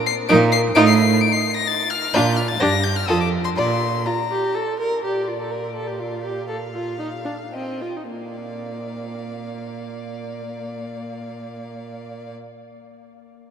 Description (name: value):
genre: quick classical-period movement for string quartet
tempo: 101-130 BPM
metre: 3/4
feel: straight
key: Bb major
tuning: A4 = 440 Hz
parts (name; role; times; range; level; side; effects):
- rich violin; melody; 0.1-12.3 s; D5 to D7; -26 LUFS; left 8 dB; none
- warm violin; second line; 0.3-12.3 s; F4 to F5; -27 LUFS; left 2 dB; none
- rich viola; accompaniment; 0.3-12.3 s; Bb3 to Bb4; -25 LUFS; right 1 dB; none
- rich cello; bass; 0.3-12.3 s; F2 to Bb2; -24 LUFS; right 5 dB; none
room: wet cathedral reverb, RT60 6.4 s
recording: in a vast, echoing space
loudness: -18 LUFS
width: side -8 dB against mid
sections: 0.0-5.0 A section; 5.0-8.1 B section; 8.1-11.6 C section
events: slowing down 4.3-8.1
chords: 0.3 Eb5/Bb; 0.8 F7/A; 2.1 Bb; 2.6 Gm; 3.1 F; 3.6 Bb5; 5.0 Bb; 6.5 Bbsus2; 8.1 Bb